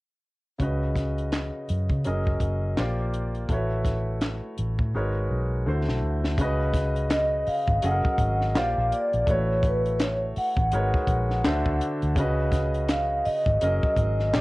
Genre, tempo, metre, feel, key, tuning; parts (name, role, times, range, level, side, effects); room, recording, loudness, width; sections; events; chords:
R&B, neo-soul; 83 BPM; 4/4; swing 60% on 16ths; A4 = 440 Hz
warm concert grand piano; accompaniment; 0.6-14.4 s; C#3 to E5; -29 LUFS; equal; cassette tape
vintage muted fingered electric bass; bass; 0.6-14.4 s; F#1 to C#3; -26 LUFS; equal
compact cocktail drum kit; drums; 0.6-14.4 s; handclaps, hi-hat, kick drum, snare drum; -27 LUFS; equal; cassette tape
vibraphone with soft mallets; melody; 7.1-14.4 s; B4 to F#5; -26 LUFS; equal
light reverb; home recording on cassette; -23 LUFS; side -20 dB against mid
0.6-6.4 A section; 6.4-14.4 B section
drum fill 4.9-6.4
0.6 C#7sus4; 2.0 F#6; 2.8 A#69; 3.5 A69; 4.9 G#m11; 5.7 D9; 6.4 C#7sus4; 7.8 F#6; 8.6 A#69; 9.3 A69; 10.7 G#m11; 11.4 D9; 12.2 C#7sus4; 13.6 F#6